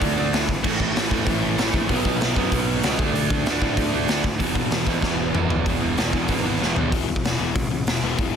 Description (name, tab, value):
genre	punk rock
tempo	191 BPM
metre	4/4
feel	straight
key	unclear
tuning	A4 = 440 Hz
part	overdriven electric guitar	riff	0.0-6.9 s	E2 to D4	-25 LUFS	right 11 dB	none
part	sludgy distorted guitar	riff	0.0-8.3 s	E2 to D4	-26 LUFS	left 12 dB	overdrive
part	fuzz picked electric bass	bass	0.0-8.4 s	E1 to A2	-28 LUFS	equal	overdrive
part	raw garage drum kit	drums	0.0-8.3 s	crash cymbal, hi-hat, kick drum, snare drum, toms	-23 LUFS	equal	none
room	little or no reverb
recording	dense, heavily limited modern master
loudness	-19 LUFS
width	side -7 dB against mid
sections	0.0-5.7 A section; 5.7-6.9 B section; 6.9-8.4 C section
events	drum fill 5.0-5.7, 6.6-6.9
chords	0.0 D5; 0.6 A5; 1.9 B5; 3.0 D5; 4.4 E5; 5.7 E; 6.9 E5